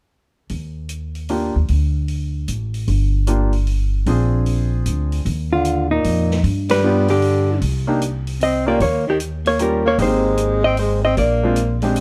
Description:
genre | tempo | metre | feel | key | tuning
jazz, small-group swing and bop | 152 BPM | 3/4 | swing 66% on 8ths | Eb major | A4 = 438 Hz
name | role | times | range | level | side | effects
upright bass | bass | 0.5-12.0 s | G1 to G2 | -22 LUFS | equal | none
open jazz drum kit | drums | 0.5-12.0 s | hi-hat, ride cymbal, snare drum | -36 LUFS | equal | none
clear grand piano | accompaniment | 1.3-12.0 s | Ab3 to Ab4 | -24 LUFS | equal | none
hollow-body jazz guitar | melody | 5.5-11.8 s | Eb4 to Eb5 | -22 LUFS | equal | none
breathy tenor saxophone | second line | 5.5-11.8 s | Bb2 to C4 | -24 LUFS | equal | none
room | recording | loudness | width
light reverb | dark, warm production | -19 LUFS | mono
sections
0.5-5.3 A section; 5.3-12.0 B section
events
band accent 6.6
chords
0.5 Ebmaj9; 1.7 D5; 2.9 Gm7; 4.1 Bb7; 5.3 Eb5; 6.4 G7; 7.6 Cm7; 8.8 Eb7; 10.0 Abmaj7; 11.2 Bb7

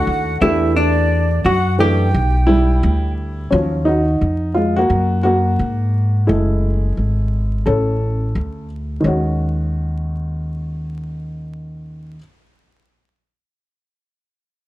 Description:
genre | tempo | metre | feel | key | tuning
hip hop | 87 BPM | 4/4 | swing 65% on 16ths | unclear | A4 = 440 Hz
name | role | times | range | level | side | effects
vintage hollow-body jazz guitar | melody | 0.0-3.1 s | D4 to G4 | -19 LUFS | equal | none
breathy bright concert flute | second line | 0.0-3.1 s | D5 to G5 | -24 LUFS | right 2 dB | none
dark upright piano | accompaniment | 0.0-12.2 s | Eb3 to A4 | -19 LUFS | equal | none
upright bass | bass | 0.0-12.2 s | Gb1 to Ab2 | -18 LUFS | equal | none
room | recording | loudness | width
light reverb, studio reverb | dark, warm production, vinyl crackle | -15 LUFS | side -15 dB against mid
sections
0.0-3.5 A section; 3.5-9.0 B section; 9.0-11.8 C section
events
upright piano solo 3.5-9.0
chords
0.4 Em9; 3.5 Ebm9; 6.3 Gbm9; 9.0 Ebm7

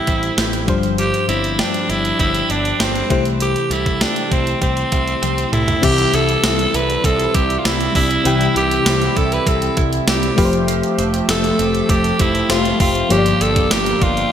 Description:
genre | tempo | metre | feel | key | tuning
1980s-style pop | 99 BPM | 4/4 | straight | C major | A4 = 440 Hz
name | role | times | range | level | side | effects
raspy alto saxophone | melody | 0.0-14.3 s | C4 to B4 | -19 LUFS | equal | none
FM electric piano with auto-pan | accompaniment | 0.0-14.3 s | G2 to G5 | -22 LUFS | left 5 dB | none
direct-recorded clean electric guitar | riff | 0.0-14.3 s | E3 to G4 | -26 LUFS | right 6 dB | wide subtle chorus, ping-pong delay
modern bright picked electric bass | bass | 0.1-14.2 s | F1 to C2 | -23 LUFS | equal | none
clean 12-bit digital drum machine | drums | 0.1-14.3 s | crash cymbal, hi-hat, kick drum, snare drum, tambourine, toms | -20 LUFS | equal | gated reverb
warm analog pad | sustained chords | 5.8-14.3 s | C3 to G4 | -23 LUFS | right 2 dB | chorus
room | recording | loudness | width
moderate lush hall reverb, RT60 2.4 s | bright 1980s-style digital production | -14 LUFS | side -9 dB against mid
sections
0.0-5.8 A section; 5.8-14.3 B section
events
drum fill 5.2-5.8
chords
0.0 Am7; 0.7 G7sus4; 3.1 C6; 5.8 C; 10.4 Fadd9; 13.1 Gm7

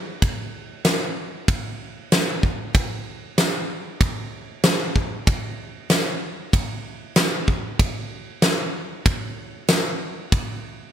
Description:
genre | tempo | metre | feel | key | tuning
dream pop | 95 BPM | 4/4 | straight | none | none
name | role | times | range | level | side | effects
huge arena drum kit | drums | 0.2-10.5 s | kick drum, ride cymbal, snare drum, tambourine | -21 LUFS | equal | gated reverb
room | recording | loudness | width
light reverb | bright 1980s-style digital production | -20 LUFS | side -10 dB against mid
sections
0.0-10.9 A section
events
none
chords
none

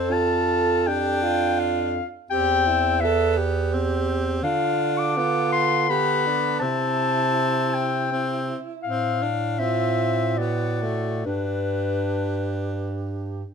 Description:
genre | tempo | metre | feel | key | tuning
classical, lyrical piece for single-reed quartet | 67-88 BPM | 3/4 | rubato | C major | A4 = 442 Hz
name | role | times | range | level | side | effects
dark clarinet | melody | 0.0-13.0 s | B4 to D6 | -24 LUFS | left 7 dB | none
clear alto saxophone | second line | 0.0-13.4 s | D4 to A4 | -27 LUFS | right 10 dB | none
clear tenor saxophone | accompaniment | 0.0-13.5 s | A3 to F4 | -28 LUFS | left 1 dB | none
mellow bass clarinet | bass | 0.0-13.4 s | E2 to D3 | -28 LUFS | right 2 dB | none
room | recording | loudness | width
moderate large studio reverb, RT60 1.1 s | minimal, uncompressed stereo recording | -21 LUFS | side -6 dB against mid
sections
0.0-13.5 A section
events
none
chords
0.1 G5/F; 2.3 C/E; 4.4 G7/D (rootless); 6.6 C; 8.9 F/A; 10.4 D/A; 11.3 G

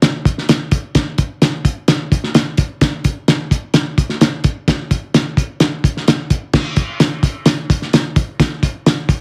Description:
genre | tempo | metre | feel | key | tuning
soul | 129 BPM | 4/4 | straight | none | none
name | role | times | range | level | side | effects
cloth-damped thuddy drum kit | drums | 0.0-9.2 s | crash cymbal, hi-hat, kick drum, snare drum | -16 LUFS | equal | none
room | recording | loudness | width
light reverb | heavily compressed radio sound, multiband compression | -16 LUFS | mono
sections
0.0-6.5 A section; 6.5-9.2 B section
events
none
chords
none

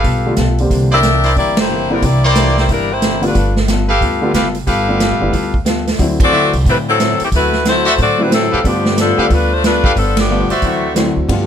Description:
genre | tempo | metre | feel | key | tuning
jazz, big band swing | 181 BPM | 4/4 | swing 62% on 8ths | G mixolydian | A4 = 441 Hz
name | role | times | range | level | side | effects
archtop guitar, miked and amplified | accompaniment | 0.0-11.5 s | C3 to A4 | -23 LUFS | left 7 dB | none
bright trumpet section | stabs | 0.0-10.9 s | E4 to F5 | -17 LUFS | equal | none
upright bass | bass | 0.0-11.5 s | F#1 to A2 | -18 LUFS | right 1 dB | none
swinging big-band drum kit | drums | 0.0-11.4 s | crash cymbal, hi-hat, kick drum, ride cymbal, snare drum | -18 LUFS | right 2 dB | none
warm upright piano | accompaniment | 0.3-11.5 s | D3 to G4 | -19 LUFS | equal | none
edgy saxophone section | melody | 0.9-3.6, 6.2-11.1 s | E3 to E5 | -15 LUFS | left 2 dB | none
warm trombone section | sustained chords | 11.3-11.5 s | F3 to G4 | -23 LUFS | right 2 dB | none
room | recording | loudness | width
light reverb | none | -11 LUFS | side -9 dB against mid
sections
0.0-11.3 A section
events
band accent 1.5, 6.2, 10.1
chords
0.0 G9; 0.7 C9; 3.3 G9; 6.0 D9; 8.6 G9; 10.6 D9

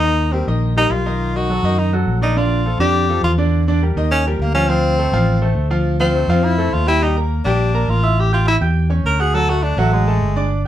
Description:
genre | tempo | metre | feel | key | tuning
Afro-Cuban jazz | 206 BPM | 4/4 | straight | unclear | A4 = 438 Hz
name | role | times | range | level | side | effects
warm tenor saxophone | melody | 0.0-10.5 s | F3 to Bb4 | -19 LUFS | left 1 dB | none
clear baby grand piano | accompaniment | 0.0-10.7 s | D3 to G6 | -21 LUFS | right 1 dB | none
fingered electric bass | bass | 0.0-10.7 s | G1 to F#2 | -17 LUFS | equal | none
room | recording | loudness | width
moderate studio ambience, RT60 0.5 s | band playing live in one room | -14 LUFS | side -12 dB against mid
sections
0.0-7.0 A section; 7.0-10.7 A section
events
tenor saxophone solo 0.0-10.7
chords
0.0 Ebadd9; 1.2 B7; 2.4 Bbmaj7; 3.5 Em7b5; 4.1 Ebadd9; 4.7 Dm7; 7.0 Ebmaj7; 8.2 A7; 9.3 D

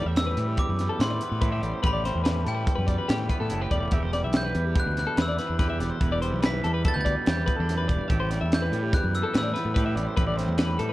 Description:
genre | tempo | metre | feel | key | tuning
math rock and midwest emo | 144 BPM | 5/4 | straight | E minor | A4 = 440 Hz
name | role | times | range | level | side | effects
twangy electric guitar | accompaniment | 0.0-10.9 s | E2 to G4 | -32 LUFS | right 4 dB | none
twelve-string electric guitar | arpeggios | 0.0-10.9 s | G4 to E5 | -32 LUFS | left 4 dB | none
fuzz fingered electric bass | bass | 0.0-10.9 s | E1 to A2 | -28 LUFS | equal | overdrive
glockenspiel with brass mallets | melody | 0.2-10.9 s | G5 to B6 | -32 LUFS | left 1 dB | none
crisp fusion drum kit | drums | 0.2-10.9 s | hi-hat, kick drum, snare drum | -27 LUFS | equal | none
room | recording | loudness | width
little or no reverb | worn, warbling old tape, cassette tape, warbly pitch drift | -23 LUFS | side -16 dB against mid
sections
0.0-10.9 A section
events
none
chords
0.0 Em7; 8.1 Am9

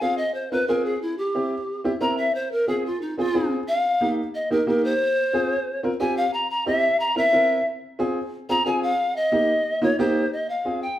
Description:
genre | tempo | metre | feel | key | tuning
latin | 180 BPM | 4/4 | straight | F minor | A4 = 444 Hz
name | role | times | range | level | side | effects
polished pan flute | melody | 0.0-11.0 s | Eb4 to Bb5 | -22 LUFS | equal | none
clear upright piano | accompaniment | 0.0-10.8 s | Bb3 to Bb4 | -25 LUFS | right 1 dB | none
room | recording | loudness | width
moderate large studio reverb, RT60 1.1 s | heard from further back in the room | -20 LUFS | side -13 dB against mid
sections
0.0-10.3 A section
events
pan flute solo 0.0-10.3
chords
0.0 Fm; 1.0 C7; 2.3 Fm; 3.7 Eb; 5.0 Fm; 6.3 C7; 7.7 Fm; 9.0 Eb; 10.3 Fm

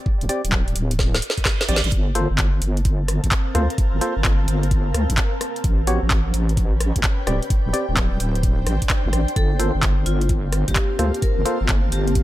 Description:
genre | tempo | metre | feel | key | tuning
UK garage, two-step garage | 129 BPM | 4/4 | swing 66% on 16ths | G minor | A4 = 440 Hz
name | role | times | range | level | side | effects
electronic kick drum | drums | 0.1-12.2 s | none | -21 LUFS | equal | none
deep soft wobble bass | bass | 0.2-12.2 s | D1 to D2 | -21 LUFS | equal | chorus
garage drum kit | drums | 0.2-12.2 s | handclaps, hi-hat, rim click, snare drum | -25 LUFS | equal | none
percussive organ stab | stabs | 0.3-11.6 s | Bb3 to D5 | -28 LUFS | equal | chorus, dub echo
reverse cymbal | sound effects | 1.2-1.9 s | none | -31 LUFS | right 8 dB | none
granular cloud pad | texture | 2.8-12.2 s | Bb3 to A5 | -29 LUFS | equal | built-in reverb, sidechain pumping
vibraphone with hard mallets | melody | 9.4-12.2 s | F4 to Bb4 | -28 LUFS | left 2 dB | dub echo
room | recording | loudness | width
little or no reverb | none | -18 LUFS | side -15 dB against mid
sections
0.0-1.9 A section; 1.9-12.2 B section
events
drum fill 1.0-1.9; reverse cymbal 1.2-1.9; drop 1.9-12.2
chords
0.0 D7sus4; 1.9 Gm11; 5.4 A13; 7.3 D7sus4; 9.4 Gm11

